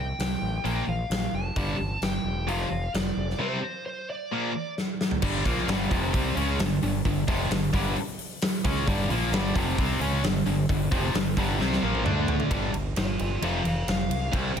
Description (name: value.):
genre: hard rock.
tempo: 132 BPM.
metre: 4/4.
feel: straight.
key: G minor.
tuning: A4 = 440 Hz.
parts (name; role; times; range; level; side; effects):
high-gain lead guitar; melody; 0.0-4.7, 13.0-14.6 s; F4 to Bb5; -33 LUFS; left 1 dB; distortion, tape echo.
growling fingered electric bass; bass; 0.0-14.6 s; E1 to D2; -30 LUFS; equal; overdrive.
huge arena drum kit; drums; 0.2-14.6 s; crash cymbal, hi-hat, kick drum, ride cymbal, snare drum, toms; -28 LUFS; equal; none.
high-gain distorted guitar; riff; 0.6-14.5 s; F2 to D4; -27 LUFS; equal; distortion.
room: light reverb.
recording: none.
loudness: -24 LUFS.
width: side -8 dB against mid.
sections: 0.0-5.2 A section; 5.2-12.5 B section; 12.5-14.6 C section.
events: drum fill 4.8-5.2, 11.6-12.5; lead electric guitar solo 12.5-14.6.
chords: 0.0 C5; 0.6 Bb5; 1.6 G5; 2.5 F5; 3.4 C5; 4.3 Bb; 5.2 Gm; 12.1 D5; 12.5 G5; 13.4 F.